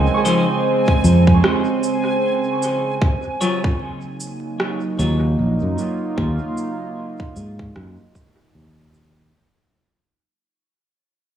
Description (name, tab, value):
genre	ambient dub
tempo	76 BPM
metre	4/4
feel	swing 59% on 16ths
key	Eb dorian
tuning	A4 = 440 Hz
part	warbly tape-like pad	sustained chords	0.0-9.3 s	Db3 to F4	-22 LUFS	right 2 dB	chorus, built-in reverb, phaser
part	concert harp	arpeggios	0.0-2.8 s	Ab3 to Db6	-29 LUFS	right 2 dB	dub echo
part	fingered electric bass	bass	0.0-9.3 s	Bb1 to Ab2	-16 LUFS	equal	none
part	backwards swelling texture	texture	0.0-3.0 s	Ab5	-27 LUFS	right 3 dB	built-in reverb
part	semi-hollow electric guitar	stabs	0.2-5.3 s	F3 to Db5	-26 LUFS	left 3 dB	dub echo
part	electronic cabasa and rim click	drums	0.3-9.1 s	none	-24 LUFS	right 1 dB	overdrive, dub echo
part	electronic kick drum	drums	0.9-8.3 s	none	-20 LUFS	equal	overdrive
room	moderate echo chamber reverb, RT60 2.6 s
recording	echo-heavy mix, vinyl crackle, small room reverb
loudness	-16 LUFS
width	side -10 dB against mid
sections	0.0-3.0 A section; 3.0-9.3 B section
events	break 1.4-3.0; fade-out 3.0-9.3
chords	0.0 Dbmaj7; 3.0 Ebm9